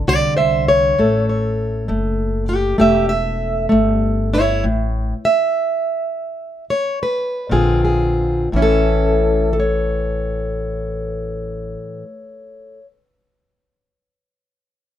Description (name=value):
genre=acoustic country blues, solo or duo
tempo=58-66 BPM (dotted quarters)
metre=12/8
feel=straight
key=A mixolydian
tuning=A4 = 440 Hz
part: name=fingerpicked plugged-in steel-string acoustic guitar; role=melody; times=0.0-12.9 s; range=A2 to E5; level=-17 LUFS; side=equal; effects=none
part: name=upright bass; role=bass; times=0.0-11.7 s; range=E1 to C2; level=-21 LUFS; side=left 1 dB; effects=none
room=light reverb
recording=none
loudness=-15 LUFS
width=side -11 dB against mid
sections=0.0-8.5 A section; 8.5-12.6 B section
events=steel-string acoustic guitar solo 0.0-8.5; slowing down 3.4-8.5; stop 4.6-7.5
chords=0.0 D7(no3); 1.0 A7; 4.6 A5; 7.5 Bb9; 8.5 A